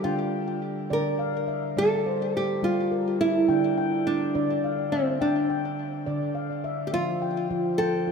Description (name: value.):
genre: world meditative, meditative tuned percussion.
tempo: 70 BPM (dotted quarters).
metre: 6/8.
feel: straight.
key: D minor.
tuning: A4 = 440 Hz.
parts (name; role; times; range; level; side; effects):
nylon-string guitar; melody; 0.0-8.1 s; C4 to Bb4; -26 LUFS; right 2 dB; shimmer reverb, ping-pong delay.
handpan; arpeggios; 0.0-8.1 s; D3 to G5; -27 LUFS; left 2 dB; shimmer reverb, ping-pong delay.
room: wet echo chamber reverb, RT60 1.7 s, small room ambience.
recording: none.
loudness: -23 LUFS.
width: side -5 dB against mid.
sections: 0.0-6.9 A section; 6.9-8.1 B section.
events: none.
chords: 0.1 Dm; 1.8 Gm; 3.5 Dm; 6.9 F.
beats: | 0.05 0.91 | 1.77 2.63 | 3.49 4.35 | 5.21 6.07 | 6.93 7.79.